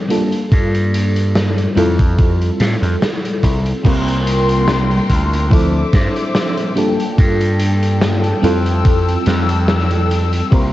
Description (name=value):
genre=vaporwave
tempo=72 BPM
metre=4/4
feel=swing 54% on 16ths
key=unclear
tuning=A4 = 440 Hz
part: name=FM electric piano with soft pad layer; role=accompaniment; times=0.0-10.7 s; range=F3 to Bb4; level=-19 LUFS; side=equal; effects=tremolo, wide subtle chorus, tape echo
part: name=raw garage drum kit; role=drums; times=0.1-10.7 s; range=crash cymbal, hi-hat, snare drum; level=-22 LUFS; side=equal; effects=vintage 12-bit sampler grit
part: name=gritty slap bass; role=bass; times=0.5-10.7 s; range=C2 to A2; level=-16 LUFS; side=equal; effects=overdrive, tube saturation
part: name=electronic kick drum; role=drums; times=0.5-10.7 s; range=none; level=-13 LUFS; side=equal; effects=vintage 12-bit sampler grit
part: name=rich symphonic string section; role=sustained chords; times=3.8-10.7 s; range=A4 to E6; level=-23 LUFS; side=left 4 dB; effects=vintage 12-bit sampler grit
room=light reverb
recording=cassette tape, nothing above 7.9 kHz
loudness=-13 LUFS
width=side -15 dB against mid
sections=0.0-3.8 A section; 3.8-10.7 B section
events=none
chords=0.1 Gm9; 1.8 Fmaj9; 3.8 C7sus4; 5.5 Dm9; 6.8 Gm9; 8.4 Fmaj9